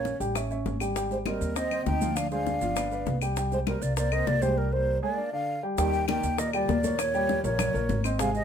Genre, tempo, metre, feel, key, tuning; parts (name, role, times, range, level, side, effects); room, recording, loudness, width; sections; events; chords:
Afro-Cuban jazz; 199 BPM; 4/4; straight; C minor; A4 = 441 Hz
breathy mellow concert flute; melody; 0.0-8.4 s; Bb4 to G5; -30 LUFS; left 1 dB
warm trombone; second line; 0.0-8.4 s; Bb2 to Eb4; -36 LUFS; right 6 dB
dark baby grand piano; accompaniment; 0.0-8.4 s; F3 to Ab5; -31 LUFS; equal
upright bass; bass; 0.0-8.4 s; G1 to Eb2; -30 LUFS; equal
bongos; percussion; 0.1-8.4 s; -36 LUFS; left 10 dB
congas; percussion; 0.1-8.4 s; -36 LUFS; left 2 dB
maracas; percussion; 0.1-8.4 s; -41 LUFS; right 8 dB
claves; percussion; 0.4-8.2 s; -38 LUFS; left 7 dB
light reverb; minimal, uncompressed stereo recording; -25 LUFS; side -8 dB against mid
0.0-5.8 A section; 5.8-8.4 B section
break 4.6-5.8
0.4 A7; 1.0 Abmaj7; 2.2 Dm7b5; 2.8 G7; 3.4 C5; 5.2 Dmadd11; 5.8 Ebmaj7; 7.0 Eb7